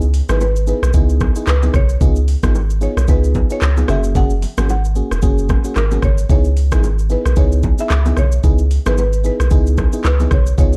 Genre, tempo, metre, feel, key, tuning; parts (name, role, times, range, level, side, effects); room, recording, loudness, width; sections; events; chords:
afrobeats; 112 BPM; 4/4; swing 58% on 16ths; C# dorian; A4 = 440 Hz
buzzing marimba with medium mallets; melody; 0.0-10.8 s; A#4 to F#5; -27 LUFS; equal
FM electric piano; accompaniment; 0.0-10.8 s; A#3 to G#4; -26 LUFS; equal; chorus
punchy sub bass; bass; 0.0-10.8 s; E1 to C#2; -18 LUFS; equal
afro-pop drum kit; drums; 0.0-10.8 s; handclaps, hi-hat, kick drum, rim click, shaker; -20 LUFS; equal
bongos and congas; percussion; 0.3-10.7 s; -28 LUFS; equal
digital ambience; dark, warm production; -15 LUFS; mono
0.0-10.8 A section
0.0 C#m7; 2.0 C#7; 3.9 F#add9; 6.3 C#m7